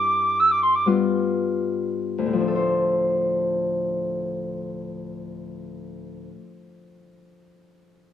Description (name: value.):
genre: celtic folk, Celtic slow air.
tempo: 37-46 BPM.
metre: 3/4.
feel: rubato.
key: D dorian.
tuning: A4 = 443 Hz.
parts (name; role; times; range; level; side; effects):
mellow hollow wooden whistle; melody; 0.0-0.9 s; C6 to E6; -18 LUFS; right 2 dB; none.
Celtic harp; accompaniment; 0.0-6.6 s; D2 to C5; -24 LUFS; left 3 dB; none.
room: light reverb.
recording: close, detailed microphones.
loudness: -20 LUFS.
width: side -9 dB against mid.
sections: 0.0-2.4 A section; 2.4-7.1 B section.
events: slowing down 0.0-2.4.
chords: 0.0 G7; 2.4 Dm7.